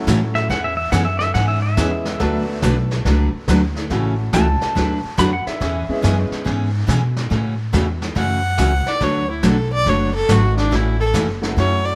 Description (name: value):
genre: country, western swing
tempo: 141 BPM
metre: 4/4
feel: swing 66% on 8ths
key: A major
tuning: A4 = 440 Hz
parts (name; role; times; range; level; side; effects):
- clear upright piano; accompaniment; 0.0-6.4, 11.4-12.0 s; F#3 to A4; -29 LUFS; equal; none
- picked steel-string acoustic guitar; accompaniment; 0.1-11.8 s; C#3 to B4; -23 LUFS; equal; none
- upright bass; bass; 0.1-12.0 s; F#1 to B2; -22 LUFS; equal; none
- vintage brush drum kit; drums; 0.1-12.0 s; brushed snare drum, hi-hat, kick drum, snare drum; -28 LUFS; equal; none
- pedal steel guitar; second line; 0.4-6.3 s; E5 to B5; -25 LUFS; equal; none
- warm fiddle; melody; 8.2-12.0 s; D4 to F#5; -23 LUFS; equal; none
room: light reverb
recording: none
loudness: -19 LUFS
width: mono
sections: 0.0-7.3 A section; 7.3-12.0 A section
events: pedal steel guitar solo 0.0-7.3; fiddle solo 7.3-12.0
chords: 0.5 E6; 2.2 D6; 3.9 A6; 4.8 D6; 5.6 E6; 7.3 A6; 9.0 D6; 10.7 A6